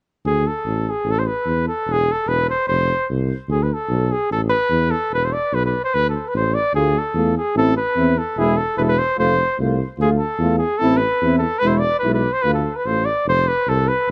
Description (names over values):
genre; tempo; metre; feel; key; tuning
balkan folk, Balkan brass band; 148 BPM; 2/4; swing 55% on 16ths; D dorian sharp4; A4 = 440 Hz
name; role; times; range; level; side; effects
mellow tuba; bass; 0.2-14.1 s; E1 to E2; -24 LUFS; equal; none
clear flugelhorn; melody; 0.3-14.1 s; G#4 to D5; -22 LUFS; equal; tape echo
clear trombone; accompaniment; 6.8-13.0 s; E4 to F4; -29 LUFS; equal; none
dark euphonium; accompaniment; 6.8-13.0 s; G#3 to C4; -24 LUFS; equal; none
room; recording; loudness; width
light reverb; dark, warm production; -19 LUFS; mono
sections
0.3-6.7 A section; 6.7-13.3 A section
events
none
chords
0.3 D5; 1.1 A5; 1.9 Eadd11; 2.7 F5; 3.5 D5; 4.3 A5; 5.1 E5; 5.9 D5; 6.7 Dm; 7.6 Am; 8.4 E; 9.2 F; 10.0 Dm; 10.8 Am; 11.6 E; 12.5 Dm; 13.3 F5